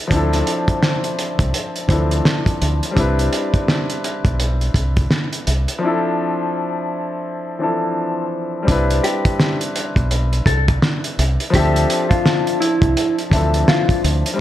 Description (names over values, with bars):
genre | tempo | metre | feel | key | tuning
hip hop, boom-bap hip-hop | 84 BPM | 4/4 | swing 59% on 16ths | D dorian | A4 = 441 Hz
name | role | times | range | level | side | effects
warm grand piano | accompaniment | 0.0-14.4 s | E3 to E5 | -21 LUFS | left 2 dB | cassette tape, high-pass filter, low-pass filter
deep dub fingered electric bass | bass | 0.1-14.2 s | B1 to D2 | -18 LUFS | equal | none
cloth-damped thuddy drum kit | drums | 0.1-14.4 s | hi-hat, kick drum, snare drum | -18 LUFS | equal | none
mellow electric guitar | melody | 9.0-14.0 s | E4 to A4 | -20 LUFS | left 1 dB | high-pass filter, low-pass filter, slapback echo
room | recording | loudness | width
light reverb, small room ambience | none | -16 LUFS | side -13 dB against mid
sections
0.0-8.7 A section; 8.7-14.4 B section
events
break 5.8-8.7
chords
0.1 Dm9; 3.0 Cmaj7; 5.8 Dm9; 8.7 Cmaj7; 11.5 Dm9